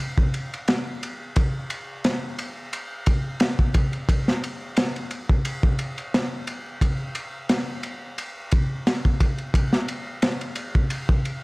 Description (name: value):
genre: trip hop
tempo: 88 BPM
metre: 4/4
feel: swing 54% on 16ths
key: none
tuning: none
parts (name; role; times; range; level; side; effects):
- crunchy breakbeat drum kit; drums; 0.2-11.4 s; kick drum, ride cymbal, snare drum; -22 LUFS; equal; none
room: light reverb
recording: vinyl crackle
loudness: -22 LUFS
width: side -27 dB against mid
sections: 0.0-11.4 A section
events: none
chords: none